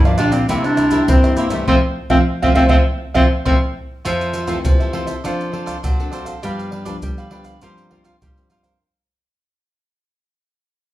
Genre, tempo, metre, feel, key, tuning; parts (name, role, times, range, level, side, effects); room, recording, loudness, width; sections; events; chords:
samba and choro; 101 BPM; 4/4; straight; F major; A4 = 440 Hz
clear clarinet; melody; 0.0-3.5 s; A3 to D4; -18 LUFS; equal
nylon-string guitar; accompaniment; 0.0-8.8 s; F2 to A4; -25 LUFS; left 4 dB
nylon-string guitar; bass; 0.0-8.7 s; G2 to C4; -23 LUFS; equal
cavaquinho; accompaniment; 0.1-8.8 s; D4 to F5; -24 LUFS; right 3 dB
maracas, pandeiro, tamborim and surdo; percussion; 0.1-8.8 s; -18 LUFS; equal
wet large studio reverb, RT60 0.9 s; band playing live in one room; -15 LUFS; side -15 dB against mid
0.0-4.1 A section; 4.1-8.8 B section
band accent 1.7-4.1; fade-out 4.1-8.8
0.5 C7; 1.7 Fmaj7; 5.2 Dm7/F; 6.4 G7; 7.6 C7sus4/G